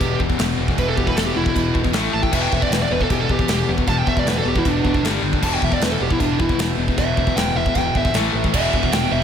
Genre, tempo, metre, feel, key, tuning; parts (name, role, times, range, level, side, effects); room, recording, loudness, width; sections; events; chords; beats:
heavy metal; 155 BPM; 4/4; straight; E minor; A4 = 442 Hz
high-gain lead guitar; melody; 0.0-9.2 s; D4 to A5; -23 LUFS; right 2 dB; distortion, slapback echo
high-gain distorted guitar; riff; 0.0-9.2 s; E2 to A3; -24 LUFS; left 9 dB; distortion
high-gain distorted guitar; riff; 0.0-9.2 s; E2 to A3; -25 LUFS; right 1 dB; distortion
picked electric bass; bass; 0.0-9.2 s; E1 to A1; -25 LUFS; right 1 dB
modern studio drum kit; drums; 0.0-9.0 s; china cymbal, crash cymbal, kick drum, snare drum; -22 LUFS; equal
heavy high-gain guitar; riff; 8.5-9.2 s; E2 to E3; -25 LUFS; right 12 dB; distortion
light reverb; -17 LUFS; side -8 dB against mid
0.0-9.2 A section
lead electric guitar solo 0.0-9.2
0.0 E5; 1.9 A5; 2.3 E5; 5.0 G5; 5.4 Em; 8.1 A5; 8.5 E5
0.00 0.39 | 0.78 1.17 1.55 1.94 | 2.33 2.71 3.10 3.49 | 3.88 4.27 4.65 5.04 | 5.43 5.82 6.20 6.59 | 6.98 7.37 7.76 8.14 | 8.53 8.92